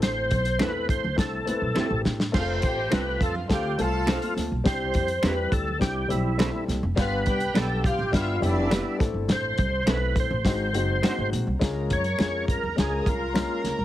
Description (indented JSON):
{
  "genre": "uptempo 1960s-style soul",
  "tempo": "104 BPM",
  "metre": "4/4",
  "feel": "straight",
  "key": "C major",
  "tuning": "A4 = 440 Hz",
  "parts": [
    { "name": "overdriven tonewheel organ", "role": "melody", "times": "0.0-13.6 s", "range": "E4 to Db5", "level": "-29 LUFS", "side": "right 1 dB", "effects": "chorus vibrato, slow rotary speaker" },
    { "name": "warm grand piano", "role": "accompaniment", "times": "0.0-13.8 s", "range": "G3 to B4", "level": "-31 LUFS", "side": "left 4 dB", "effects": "none" },
    { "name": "upright bass", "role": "bass", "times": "0.0-13.8 s", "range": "F1 to A2", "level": "-29 LUFS", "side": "equal", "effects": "none" },
    { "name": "warm soul drum kit", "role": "drums", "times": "0.0-13.8 s", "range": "crash cymbal, hi-hat, kick drum, snare drum", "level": "-26 LUFS", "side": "equal", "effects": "none" },
    { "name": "congas", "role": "percussion", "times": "0.0-13.8 s", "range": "none", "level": "-38 LUFS", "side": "right 5 dB", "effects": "none" },
    { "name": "electric guitar through a small old amp", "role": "stabs", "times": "0.6-11.1 s", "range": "Ab3 to C5", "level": "-32 LUFS", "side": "right 5 dB", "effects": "none" },
    { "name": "finger snaps", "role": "percussion", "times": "0.6-13.5 s", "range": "none", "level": "-36 LUFS", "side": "left 1 dB", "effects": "none" },
    { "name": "warm studio string section", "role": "second line", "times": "2.3-13.8 s", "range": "D4 to Bb5", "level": "-33 LUFS", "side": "equal", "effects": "none" }
  ],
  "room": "small room ambience",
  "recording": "heavily compressed radio sound",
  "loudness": "-22 LUFS",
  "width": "side -13 dB against mid",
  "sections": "0.0-11.6 A section; 11.6-13.8 B section",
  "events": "drum fill 1.8-2.3",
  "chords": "0.0 Am; 2.3 F; 4.7 C; 9.0 Am; 10.4 Ab7; 11.6 Db"
}